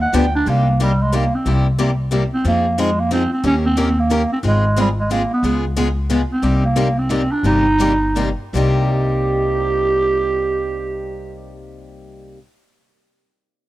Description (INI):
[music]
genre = acoustic string swing (jazz manouche)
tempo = 154-181 BPM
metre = 3/4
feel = swing 59% on 8ths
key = C minor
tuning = A4 = 440 Hz
[part]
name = growling clarinet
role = melody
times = 0.0-11.7 s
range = G3 to G5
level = -18 LUFS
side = right 2 dB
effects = none
[part]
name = upright bass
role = bass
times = 0.0-12.3 s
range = G1 to F2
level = -20 LUFS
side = equal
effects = none
[part]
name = picked acoustic archtop guitar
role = accompaniment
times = 0.1-12.4 s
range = C3 to Bb4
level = -23 LUFS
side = left 5 dB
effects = none
[part]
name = picked steel-string acoustic guitar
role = accompaniment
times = 0.1-12.4 s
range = C3 to Bb4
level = -26 LUFS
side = right 4 dB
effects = none
[sound]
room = little or no reverb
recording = dry, close 1970s-style studio recording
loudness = -15 LUFS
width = side -15 dB against mid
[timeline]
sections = 0.5-8.5 A section; 8.5-10.9 B section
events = slowing down 6.4-8.5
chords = 0.5 Cm7; 1.5 C7; 2.5 Fm7; 3.4 Eb7; 4.4 Ab6; 5.4 Db7; 6.4 Cm7